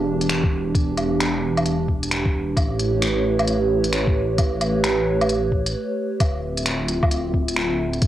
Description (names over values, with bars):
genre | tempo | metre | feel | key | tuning
future garage | 132 BPM | 4/4 | swing 63% on 16ths | D dorian | A4 = 439 Hz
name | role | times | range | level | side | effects
warbly tape-like pad | sustained chords | 0.0-8.1 s | D3 to E5 | -23 LUFS | right 2 dB | chorus, built-in reverb, sidechain pumping
swelling detuned saw bass | bass | 0.0-8.1 s | D1 to A1 | -26 LUFS | left 1 dB | sidechain pumping
organic electronic drum kit | drums | 0.2-8.1 s | finger snaps, hi-hat, woodblock | -26 LUFS | equal | cassette tape
electronic kick drum | drums | 0.4-8.1 s | none | -20 LUFS | equal | cassette tape
room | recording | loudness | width
moderate studio reverb, RT60 0.6 s | home recording on cassette | -19 LUFS | side -12 dB against mid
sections
0.0-6.2 A section; 6.2-8.1 A section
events
break 5.8-6.2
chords
0.0 Em7; 2.6 A9; 6.2 Dm9